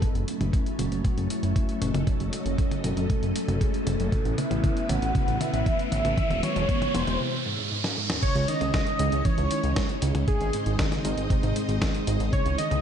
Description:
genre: italo disco.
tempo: 117 BPM.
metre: 4/4.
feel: straight.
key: C# harmonic minor from 8.2 s.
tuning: A4 = 440 Hz.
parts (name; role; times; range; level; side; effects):
wide unison lead; melody; 0.0-12.8 s; G#4 to F#5; -32 LUFS; right 1 dB; ping-pong delay, shimmer reverb.
string machine, full ensemble; sustained chords; 0.0-12.8 s; F#3 to D#5; -31 LUFS; equal; ensemble chorus, shimmer reverb.
warbly dusty pluck; arpeggios; 0.0-12.8 s; D#2 to C#4; -34 LUFS; right 2 dB; lush chorus, tape echo, shimmer reverb.
dusty soul sampler-style drum kit; drums; 0.0-12.8 s; crash cymbal, hi-hat, snare drum, toms; -32 LUFS; left 1 dB; studio reverb.
electronic kick drum; drums; 0.0-12.4 s; none; -26 LUFS; equal; studio reverb.
riser; sound effects; 1.6-8.2 s; none; -35 LUFS; right 2 dB; none.
fat analog bass; bass; 0.1-12.8 s; E1 to C#2; -28 LUFS; equal; tube saturation.
room: moderate digital room reverb, RT60 0.9 s, digital ambience.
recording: dark, warm production, nothing above 10.7 kHz.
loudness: -23 LUFS.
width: side -8 dB against mid.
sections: 0.0-8.2 A section; 8.2-12.8 B section.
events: drum fill 0.0-7.2, 7.8-8.2; filter sweep on synth arpeggio sound 0.0-8.2; filter sweep on string machine 0.0-8.2; filter sweep on analog synth lead 0.0-8.2; riser 1.6-8.2; break 7.2-8.2.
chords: 0.0 F#m; 4.1 Aadd9; 6.2 Eadd9; 7.2 G#; 8.2 C#madd9; 10.3 G#.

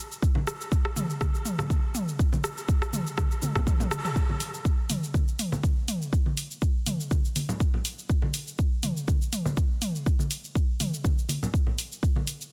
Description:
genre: house.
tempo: 122 BPM.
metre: 4/4.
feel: swing 54% on 16ths.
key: none.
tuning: none.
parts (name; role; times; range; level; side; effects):
deep house drum kit; drums; 0.1-12.5 s; hi-hat, rim click, shaker, toms; -33 LUFS; equal; soft clipping on snare.
electronic kick drum; drums; 0.2-12.1 s; none; -27 LUFS; equal; none.
congas; percussion; 0.3-12.3 s; none; -35 LUFS; equal; none.
room: light reverb.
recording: dense, heavily limited modern master.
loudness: -27 LUFS.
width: mono.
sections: 0.0-4.2 A section; 4.2-12.5 B section.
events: drum fill 3.4-4.2; band accent 3.9.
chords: none.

